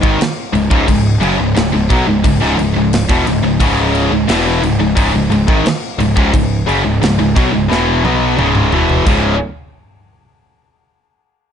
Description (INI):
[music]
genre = heavy metal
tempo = 88 BPM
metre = 4/4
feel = straight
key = C# minor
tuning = A4 = 442 Hz
[part]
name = heavy high-gain guitar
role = riff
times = 0.0-9.3 s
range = C#2 to B3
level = -20 LUFS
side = equal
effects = distortion
[part]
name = high-gain distorted guitar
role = riff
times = 0.0-9.3 s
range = C#2 to B3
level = -18 LUFS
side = right 10 dB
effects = distortion
[part]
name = tight distorted guitar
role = riff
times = 0.0-9.3 s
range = C#2 to B3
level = -16 LUFS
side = left 10 dB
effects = distortion
[part]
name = fuzz picked electric bass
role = bass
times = 0.0-9.4 s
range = C#1 to B1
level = -18 LUFS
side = equal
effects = overdrive
[part]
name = tight metal drum kit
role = drums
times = 0.0-9.2 s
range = crash cymbal, kick drum, snare drum, toms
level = -18 LUFS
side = equal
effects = none
[sound]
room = little or no reverb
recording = dark, warm production, nothing above 10.7 kHz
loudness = -11 LUFS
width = side -8 dB against mid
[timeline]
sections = 0.0-9.1 A section; 9.1-11.5 B section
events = drum fill 7.7-9.1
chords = 0.0 C#m; 9.1 C#5